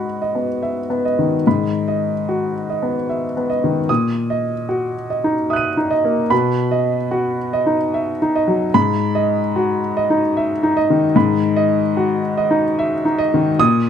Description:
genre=neoclassical minimalist piano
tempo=74 BPM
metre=3/4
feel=rubato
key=G# minor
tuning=A4 = 441 Hz
part: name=clear upright piano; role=solo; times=0.0-13.9 s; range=G#2 to D#7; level=-16 LUFS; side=equal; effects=slapback echo
room=light reverb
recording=close, detailed microphones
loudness=-16 LUFS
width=side -8 dB against mid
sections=0.0-13.9 A section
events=none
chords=0.0 G#m7; 3.9 D#m/A#; 6.3 B; 8.7 G#m7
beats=0.62 | 1.45 2.28 3.09 | 3.89 4.70 5.50 | 6.31 7.12 7.93 | 8.73 9.54 10.34 | 11.15 11.96 12.78 | 13.59

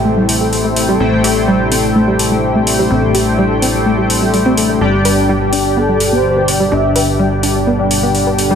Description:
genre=progressive house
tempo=126 BPM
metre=4/4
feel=straight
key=A minor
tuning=A4 = 436 Hz
part: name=lush unison pad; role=sustained chords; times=0.0-8.6 s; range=B2 to G4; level=-18 LUFS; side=equal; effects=chorus
part: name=chorused polysynth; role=stabs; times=0.0-8.6 s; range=G3 to G5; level=-16 LUFS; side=left 2 dB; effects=tape echo
part: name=plucky analog bass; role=bass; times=0.0-8.6 s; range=G1 to A1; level=-20 LUFS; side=right 1 dB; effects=tube saturation
part: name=downlifter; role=sound effects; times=0.0-1.0 s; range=none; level=-34 LUFS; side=equal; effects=none
part: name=analog pluck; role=arpeggios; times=0.1-8.6 s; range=G3 to B4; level=-18 LUFS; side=equal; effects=chorus, tape echo
part: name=electronic hi-hat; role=drums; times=0.3-8.5 s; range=none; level=-19 LUFS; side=left 1 dB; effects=overdrive
part: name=expressive portamento lead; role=melody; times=5.5-7.2 s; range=G4 to E5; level=-18 LUFS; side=right 1 dB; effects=ensemble chorus, ping-pong delay
room=moderate digital room reverb, RT60 1.2 s, digital ambience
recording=none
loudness=-11 LUFS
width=side -7 dB against mid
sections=0.0-8.6 A section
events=filter sweep on analog synth pad 0.0-8.6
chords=0.0 Am7; 4.8 G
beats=0.05 0.53 | 1.00 1.48 1.96 2.43 | 2.91 3.38 3.86 4.34 | 4.81 5.29 5.76 6.24 | 6.72 7.19 7.67 8.15

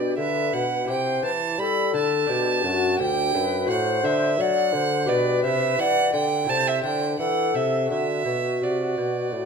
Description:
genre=classical, baroque-style sonata movement with continuo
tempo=85 BPM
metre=4/4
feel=straight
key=G major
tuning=A4 = 440 Hz
part: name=mellow hollow silver concert flute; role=melody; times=0.0-9.5 s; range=F#4 to D5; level=-26 LUFS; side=left 7 dB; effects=none
part: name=rich violin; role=second line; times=0.0-9.5 s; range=D5 to B5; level=-24 LUFS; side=right 6 dB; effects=none
part: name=lute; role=accompaniment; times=0.0-9.5 s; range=D2 to C5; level=-29 LUFS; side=left 2 dB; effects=none
part: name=mellow bassoon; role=bass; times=0.0-9.5 s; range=D2 to G3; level=-27 LUFS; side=right 1 dB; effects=none
room=moderate concert hall reverb, RT60 1.7 s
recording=close, detailed microphones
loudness=-20 LUFS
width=side -5 dB against mid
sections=0.0-9.5 A section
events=none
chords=0.0 G; 0.9 C; 2.3 G; 3.7 F#dim/A; 5.1 G/B; 6.5 Am/C; 7.9 D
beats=0.18 0.88 1.59 | 2.29 3.00 3.70 4.39 | 5.09 5.79 6.49 7.19 | 7.90 8.61 9.33

